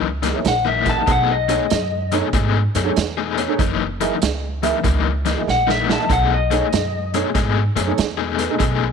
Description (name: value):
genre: electric blues shuffle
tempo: 96 BPM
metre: 4/4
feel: swing 66% on 8ths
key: unclear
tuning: A4 = 439 Hz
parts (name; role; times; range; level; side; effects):
- overdriven semi-hollow guitar; riff; 0.0-8.9 s; F#2 to G#4; -22 LUFS; left 12 dB; tremolo
- upright bass; bass; 0.0-8.9 s; F#1 to G#2; -23 LUFS; right 1 dB; none
- dark baby grand piano; accompaniment; 0.2-8.6 s; D#4 to F#5; -26 LUFS; right 13 dB; none
- vintage drum kit; drums; 0.2-8.8 s; hi-hat, kick drum, snare drum; -23 LUFS; right 4 dB; none
- electric guitar through a small old amp; melody; 0.5-7.5 s; D#5 to A5; -20 LUFS; left 3 dB; none
room: light reverb, small room ambience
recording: 1960s-style stereo with parts hard left and right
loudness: -17 LUFS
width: side -6 dB against mid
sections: 0.0-8.9 A section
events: drum fill 5.5-6.1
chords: 0.0 F#13; 1.1 B13; 3.6 F#13; 6.1 B13